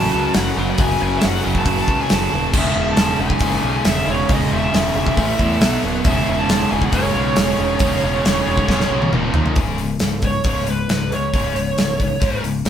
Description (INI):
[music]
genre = hard rock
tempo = 136 BPM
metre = 4/4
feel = straight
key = C# minor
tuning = A4 = 440 Hz
[part]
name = high-gain lead guitar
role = melody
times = 0.0-12.4 s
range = B4 to A5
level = -22 LUFS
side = right 2 dB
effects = distortion
[part]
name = overdriven tonewheel organ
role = sustained chords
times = 0.0-9.6 s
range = F#3 to E5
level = -32 LUFS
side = equal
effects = none
[part]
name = overdriven electric guitar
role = riff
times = 0.0-9.6 s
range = C#2 to B3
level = -24 LUFS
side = equal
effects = none
[part]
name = overdriven semi-hollow guitar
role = riff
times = 0.0-9.6 s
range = C#2 to B3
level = -25 LUFS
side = right 4 dB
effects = none
[part]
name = scooped high-gain guitar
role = riff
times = 0.0-12.7 s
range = C#2 to B3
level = -24 LUFS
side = left 4 dB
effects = distortion
[part]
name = growling picked electric bass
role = bass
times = 0.0-12.7 s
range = C#1 to E2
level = -24 LUFS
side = equal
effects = overdrive
[part]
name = gated 80s drum kit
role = drums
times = 0.3-12.7 s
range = crash cymbal, hi-hat, kick drum, snare drum, toms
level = -20 LUFS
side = equal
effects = none
[sound]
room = moderate studio reverb, RT60 0.7 s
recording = band playing live in one room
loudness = -15 LUFS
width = side -9 dB against mid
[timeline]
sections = 0.0-9.6 A section; 9.6-12.7 B section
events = drum fill 8.7-9.6; lead electric guitar solo 9.6-12.7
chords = 0.0 F#m; 2.5 C#m/E; 5.2 A5; 5.6 B5; 6.1 C#m/E; 9.1 D#5; 9.6 C#5